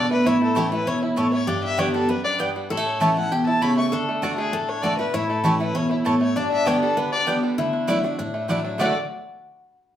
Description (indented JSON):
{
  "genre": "bluegrass",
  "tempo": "197 BPM",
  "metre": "4/4",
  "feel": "straight",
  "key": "D major",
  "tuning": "A4 = 439 Hz",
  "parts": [
    { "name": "bluegrass banjo", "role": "melody", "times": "0.0-9.0 s", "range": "G3 to A4", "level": "-30 LUFS", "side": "right 2 dB", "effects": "none" },
    { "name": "dark fiddle", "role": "melody", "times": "0.0-8.9 s", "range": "E4 to C#6", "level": "-26 LUFS", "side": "left 2 dB", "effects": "none" },
    { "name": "lap resonator guitar", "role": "second line", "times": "0.0-8.9 s", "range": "D4 to A4", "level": "-27 LUFS", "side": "left 3 dB", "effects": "none" },
    { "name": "picked steel-string acoustic guitar", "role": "accompaniment", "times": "0.0-8.9 s", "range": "F#2 to G4", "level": "-23 LUFS", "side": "equal", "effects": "none" },
    { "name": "mandolin", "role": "stabs", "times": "0.0-8.9 s", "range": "A3 to A5", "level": "-27 LUFS", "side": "right 2 dB", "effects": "none" }
  ],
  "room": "wet studio reverb, RT60 0.8 s",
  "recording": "heard from further back in the room",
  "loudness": "-20 LUFS",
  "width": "side -10 dB against mid",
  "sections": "0.0-8.8 A section; 8.8-10.0 B section",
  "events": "none",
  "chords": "0.3 A; 1.5 G; 2.7 A; 3.9 D; 5.1 A; 6.4 G; 7.6 Dadd9",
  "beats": "| 0.26 0.56 0.87 1.17 | 1.48 1.78 2.09 2.39 | 2.70 3.00 3.31 3.61 | 3.92 4.22 4.53 4.83 | 5.14 5.44 5.75 6.05 | 6.36 6.66 6.97 7.27 | 7.58 7.88 8.19 8.49 | 8.79"
}